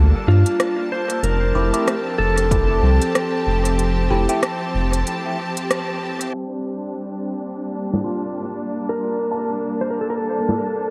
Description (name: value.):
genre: ambient dub.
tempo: 94 BPM.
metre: 4/4.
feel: swing 57% on 16ths.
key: G minor.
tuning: A4 = 440 Hz.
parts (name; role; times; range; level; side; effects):
rich studio string section; sustained chords; 0.0-10.9 s; F3 to A5; -27 LUFS; equal; none.
round analog bass; bass; 0.0-5.0 s; F1 to G2; -20 LUFS; equal; none.
clean lap steel guitar; melody; 0.3-10.9 s; F4 to C5; -26 LUFS; equal; dub echo.
organic electronic drum kit; drums; 0.5-10.6 s; congas, hi-hat, rim click; -29 LUFS; equal; overdrive, low-pass filter on hats, low-pass filter on snare, low-pass filter on perc, dub echo.
barky tine electric piano; stabs; 1.6-4.4 s; A3 to G4; -29 LUFS; equal; phaser, dub echo.
electronic kick drum; drums; 2.5-2.7 s; none; -23 LUFS; equal; overdrive.
felt-muted upright piano; arpeggios; 8.0-10.9 s; Bb3 to A5; -33 LUFS; equal; low-pass filter, dub echo.
room: light reverb.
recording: vinyl crackle, low-pass filter.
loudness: -21 LUFS.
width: mono.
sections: 0.0-6.3 A section; 6.3-10.9 B section.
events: break 5.1-6.3; band accent 5.7-6.0; filter sweep on drum 6.3-10.9; filter sweep 6.3-10.9.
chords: 0.0 Gm7; 1.2 F; 6.3 Gm7.